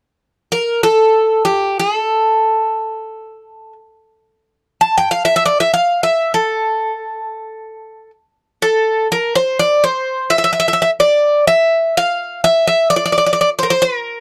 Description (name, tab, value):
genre	greek folk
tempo	free time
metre	none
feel	none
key	A phrygian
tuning	A4 = 440 Hz
part	Greek bouzouki	solo	0.5-14.2 s	G4 to A5	-15 LUFS	equal	none
room	moderate booth ambience, RT60 0.2 s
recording	dry, close 1970s-style studio recording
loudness	-15 LUFS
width	mono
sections	0.1-8.6 A section; 8.6-14.2 B section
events	none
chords	none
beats	free time